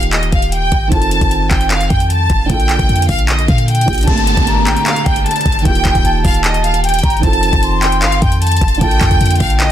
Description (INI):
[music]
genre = hip hop, trap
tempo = 152 BPM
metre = 4/4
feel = half-time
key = G minor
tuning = A4 = 441 Hz
[part]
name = rich studio violin section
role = melody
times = 0.0-9.7 s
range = Eb5 to A5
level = -17 LUFS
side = equal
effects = none
[part]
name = felt-muted upright piano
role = accompaniment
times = 0.0-9.7 s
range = D3 to A4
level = -21 LUFS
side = right 6 dB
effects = none
[part]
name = clean 808-style bass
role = bass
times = 0.0-9.7 s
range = Eb1 to Bb2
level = -16 LUFS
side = equal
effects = none
[part]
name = trap drum kit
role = drums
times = 0.0-9.7 s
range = handclaps, hi-hat, kick drum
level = -15 LUFS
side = equal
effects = none
[part]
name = mellow silver concert flute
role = second line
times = 4.1-9.7 s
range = G5 to C6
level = -20 LUFS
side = left 1 dB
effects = ping-pong delay
[part]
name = downlifter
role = sound effects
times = 4.1-7.2 s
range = none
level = -24 LUFS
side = left 2 dB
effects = none
[sound]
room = small room ambience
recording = dense, heavily limited modern master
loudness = -11 LUFS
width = side -11 dB against mid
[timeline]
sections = 0.0-4.1 A section; 4.1-9.7 B section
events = none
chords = 0.0 Ebadd9; 0.9 F7; 2.5 Bbmaj7; 4.1 Gmadd9; 5.7 Ebadd9; 7.2 F7; 8.8 Bbmaj7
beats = 0.13 0.52 | 0.92 1.31 1.71 2.10 | 2.50 2.89 3.29 3.68 | 4.08 4.47 4.87 5.26 | 5.65 6.05 6.44 6.84 | 7.23 7.63 8.02 8.42 | 8.81 9.21 9.60